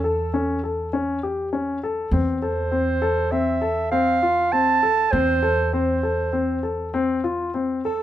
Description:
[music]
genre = contemporary instrumental, chamber music in an uneven meter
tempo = 100 BPM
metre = 5/4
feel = straight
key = unclear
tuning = A4 = 441 Hz
[part]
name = dark clarinet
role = melody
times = 0.0-8.0 s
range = A4 to A5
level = -22 LUFS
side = right 5 dB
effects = none
[part]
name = dark baby grand piano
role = arpeggios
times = 0.0-8.0 s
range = C4 to A4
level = -23 LUFS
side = left 4 dB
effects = none
[part]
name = upright bass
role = bass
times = 0.0-8.0 s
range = E2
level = -28 LUFS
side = equal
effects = none
[sound]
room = light reverb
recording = close, detailed microphones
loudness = -20 LUFS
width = side -12 dB against mid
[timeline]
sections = 0.0-8.0 A section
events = none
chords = 0.0 A/E; 2.1 Fmaj7/E (rootless)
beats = 0.34 0.94 1.53 | 2.13 2.73 3.33 3.93 4.53 | 5.13 5.74 6.34 6.94 7.55

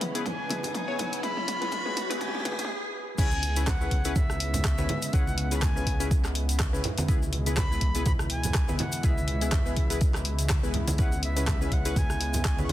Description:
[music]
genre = afro house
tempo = 123 BPM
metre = 4/4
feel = swing 56% on 16ths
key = C# minor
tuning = A4 = 441 Hz
[part]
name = warm analog pad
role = sustained chords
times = 0.0-12.7 s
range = B2 to C#5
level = -37 LUFS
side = equal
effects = chorus, sidechain pumping
[part]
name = warm analog keys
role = stabs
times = 0.0-12.7 s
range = B3 to C#5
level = -35 LUFS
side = left 3 dB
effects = chorus, sidechain pumping, dub echo
[part]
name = deep house drum kit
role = drums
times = 0.0-12.7 s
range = crash cymbal, handclaps, hi-hat, rim click, toms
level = -33 LUFS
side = equal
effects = soft clipping on snare
[part]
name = riser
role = sound effects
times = 0.0-2.7 s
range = none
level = -35 LUFS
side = equal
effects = none
[part]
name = bright reedy silver concert flute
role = melody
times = 0.3-12.7 s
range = E5 to C#6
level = -35 LUFS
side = equal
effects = dub echo
[part]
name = electronic kick drum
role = drums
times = 0.3-12.6 s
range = none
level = -26 LUFS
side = equal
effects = high-pass filter on kick
[part]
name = congas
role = percussion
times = 0.3-12.7 s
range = none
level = -34 LUFS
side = right 2 dB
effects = none
[part]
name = dark detuned saw bass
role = bass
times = 3.2-12.7 s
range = C#2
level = -30 LUFS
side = equal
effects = sidechain pumping
[part]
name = tube shaker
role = percussion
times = 3.2-12.7 s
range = none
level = -40 LUFS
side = left 2 dB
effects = none
[sound]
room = light reverb, digital ambience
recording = dense, heavily limited modern master, high-pass filter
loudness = -24 LUFS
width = side -14 dB against mid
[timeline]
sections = 0.0-3.2 A section; 3.2-12.7 B section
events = build-up 0.0-3.2; drum fill 0.0-2.7; riser 0.0-2.7; stop 2.7-3.2; drop 3.2-12.7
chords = 0.0 C#m7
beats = 0.26 0.74 | 1.23 1.72 2.21 2.70 | 3.18 3.67 4.16 4.65 | 5.13 5.62 6.11 6.60 | 7.09 7.57 8.06 8.55 | 9.04 9.53 10.01 10.50 | 10.99 11.48 11.96 12.45

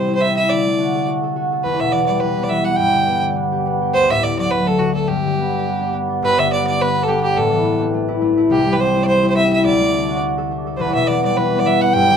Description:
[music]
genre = celtic folk, Celtic reel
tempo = 210 BPM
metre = 4/4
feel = swing 54% on 8ths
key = G major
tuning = A4 = 438 Hz
[part]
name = clear fiddle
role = melody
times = 0.0-12.2 s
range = F#4 to G5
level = -18 LUFS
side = right 2 dB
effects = none
[part]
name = concert harp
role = accompaniment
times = 0.0-12.2 s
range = E1 to A4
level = -17 LUFS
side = left 1 dB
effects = none
[sound]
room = wet small room reverb, RT60 0.5 s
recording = minimal, uncompressed stereo recording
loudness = -15 LUFS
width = side -7 dB against mid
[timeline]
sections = 0.0-6.2 A section; 6.2-12.2 A section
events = none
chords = 0.0 C; 0.5 D; 1.6 Em; 2.8 G; 3.9 D; 5.1 G; 7.4 Am; 8.5 C; 9.6 D; 10.8 Em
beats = 0.22 | 0.50 0.79 1.07 1.36 | 1.65 1.94 2.22 2.51 | 2.79 3.08 3.37 3.65 | 3.94 4.23 4.51 4.80 | 5.08 5.37 5.66 5.94 | 6.23 6.51 6.80 7.08 | 7.37 7.65 7.94 8.22 | 8.51 8.79 9.08 9.36 | 9.65 9.94 10.22 10.51 | 10.79 11.08 11.36 11.65 | 11.94

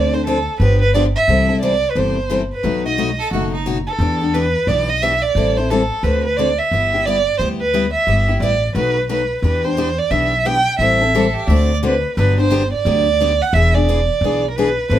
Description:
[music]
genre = acoustic string swing (jazz manouche)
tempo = 176 BPM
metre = 4/4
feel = swing 62% on 8ths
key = G major, E minor from 9.4 s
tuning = A4 = 440 Hz
[part]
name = warm violin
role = melody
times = 0.0-15.0 s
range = A4 to G5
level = -18 LUFS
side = right 3 dB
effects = none
[part]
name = picked steel-string acoustic guitar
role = accompaniment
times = 0.0-15.0 s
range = B2 to A4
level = -20 LUFS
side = left 4 dB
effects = none
[part]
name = upright bass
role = bass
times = 0.0-15.0 s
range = E1 to E2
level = -19 LUFS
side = equal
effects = none
[part]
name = clear fiddle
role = second line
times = 3.2-3.7, 11.1-11.8 s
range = D#4 to D5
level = -25 LUFS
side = right 4 dB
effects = none
[sound]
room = light reverb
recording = band playing live in one room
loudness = -14 LUFS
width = side -11 dB against mid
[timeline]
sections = 0.0-9.4 A section; 9.4-15.0 B section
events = none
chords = 0.0 Dm7; 0.6 G7; 1.3 C6; 2.6 B7; 4.0 Em7; 5.4 Am7; 6.0 D7; 6.7 G6; 8.8 B7; 9.4 Em7; 10.8 Am7; 11.5 D7; 12.2 Gmaj7; 13.5 E7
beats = 0.26 0.60 0.94 | 1.28 1.62 1.96 2.30 | 2.64 2.98 3.32 3.66 | 4.00 4.34 4.67 5.01 | 5.35 5.69 6.03 6.37 | 6.71 7.05 7.39 7.74 | 8.07 8.42 8.76 9.10 | 9.44 9.78 10.12 10.46 | 10.80 11.14 11.48 11.83 | 12.17 12.51 12.85 13.19 | 13.54 13.88 14.22 14.56 | 14.90

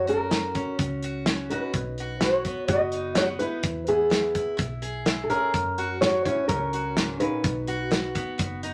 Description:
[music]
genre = honky-tonk and classic country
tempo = 126 BPM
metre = 4/4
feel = straight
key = B major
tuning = A4 = 441 Hz
[part]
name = nylon-string guitar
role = melody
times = 0.0-8.7 s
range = B3 to D#5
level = -28 LUFS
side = equal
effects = none
[part]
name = picked steel-string acoustic guitar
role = accompaniment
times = 0.0-8.7 s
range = F#2 to G#4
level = -36 LUFS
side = equal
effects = none
[part]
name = vintage muted fingered electric bass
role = bass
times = 0.0-8.7 s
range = F#1 to F#2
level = -38 LUFS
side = equal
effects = none
[part]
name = natural country drum kit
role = drums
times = 0.1-8.7 s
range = hi-hat, kick drum, snare drum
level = -30 LUFS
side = equal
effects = none
[sound]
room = moderate studio reverb, RT60 0.5 s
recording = none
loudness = -26 LUFS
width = mono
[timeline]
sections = 0.0-8.7 A section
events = none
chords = 0.0 F#; 1.7 B; 3.6 E; 5.5 F#; 7.4 B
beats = 0.32 0.79 1.27 | 1.74 2.22 2.69 3.17 | 3.64 4.12 4.59 5.07 | 5.54 6.02 6.49 6.97 | 7.45 7.92 8.40

